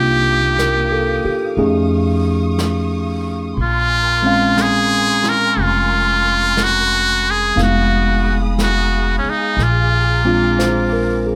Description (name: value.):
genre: jazz ballad.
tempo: 60 BPM.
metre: 4/4.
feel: swing 67% on 8ths.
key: Bb minor.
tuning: A4 = 439 Hz.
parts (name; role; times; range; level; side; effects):
trumpet with metal mute; melody; 0.0-11.3 s; Db4 to Bb4; -19 LUFS; equal; none.
tine electric piano; accompaniment; 0.0-11.4 s; Ab3 to F5; -21 LUFS; equal; none.
warm studio string section; sustained chords; 0.0-11.4 s; Bb3 to D#6; -31 LUFS; equal; none.
upright bass; bass; 0.0-11.4 s; F1 to F2; -22 LUFS; equal; none.
jazz brush drum kit; drums; 0.6-11.4 s; brushed snare drum, hi-hat, snare drum; -30 LUFS; equal; none.
room: light reverb.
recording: none.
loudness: -16 LUFS.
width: mono.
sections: 0.0-11.4 A section.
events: none.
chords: 0.0 Cm11; 1.6 F7alt; 3.6 Bbm9; 7.6 Fm7b5; 9.6 Bb7.